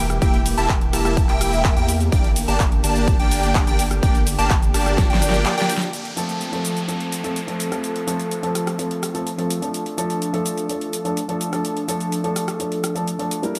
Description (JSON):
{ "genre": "EDM, festival progressive house", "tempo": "126 BPM", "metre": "4/4", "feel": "straight", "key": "D minor", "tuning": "A4 = 439 Hz", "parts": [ { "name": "lush unison pad", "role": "sustained chords", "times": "0.0-13.6 s", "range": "D3 to Bb4", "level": "-32 LUFS", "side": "equal", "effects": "chorus, sidechain pumping" }, { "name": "saturated sub bass", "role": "bass", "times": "0.0-5.5 s", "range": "E1 to E2", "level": "-26 LUFS", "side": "equal", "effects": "sidechain pumping" }, { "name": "big-room dance drum kit", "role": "drums", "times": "0.1-13.6 s", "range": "handclaps, hi-hat, ride cymbal, rim click, shaker, snare drum", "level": "-29 LUFS", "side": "equal", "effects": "none" }, { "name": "plucky unison lead", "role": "arpeggios", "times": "0.2-5.7 s", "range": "G5 to A5", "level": "-30 LUFS", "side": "equal", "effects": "phaser, sidechain pumping, dub echo" }, { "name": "supersaw chords", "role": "riff", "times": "0.2-5.7 s", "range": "Bb3 to A5", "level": "-27 LUFS", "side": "equal", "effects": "phaser, subtle chorus, sidechain pumping, low-pass filter, dub echo" }, { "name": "electronic kick drum", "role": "drums", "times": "0.2-5.1 s", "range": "none", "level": "-21 LUFS", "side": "equal", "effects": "none" }, { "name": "downlifter", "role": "sound effects", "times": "5.9-9.7 s", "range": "none", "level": "-37 LUFS", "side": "equal", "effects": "none" }, { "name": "dark baby grand piano", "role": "accompaniment", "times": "6.2-13.6 s", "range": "F3 to Bb4", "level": "-26 LUFS", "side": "equal", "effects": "sidechain pumping, dub echo" } ], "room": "light reverb", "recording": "none", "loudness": "-21 LUFS", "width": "mono", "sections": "0.0-5.9 A section; 5.9-13.6 B section", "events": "drop 0.0-5.9; drum fill 5.0-5.9", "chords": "0.0 Edim; 2.1 Gm; 5.9 F; 9.7 Dm", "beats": "| 0.22 0.69 1.17 1.65 | 2.12 2.60 3.08 3.55 | 4.03 4.50 4.98 5.46 | 5.93 6.41 6.89 7.36 | 7.84 8.31 8.79 9.27 | 9.74 10.22 10.70 11.17 | 11.65 12.12 12.60 13.08 | 13.55" }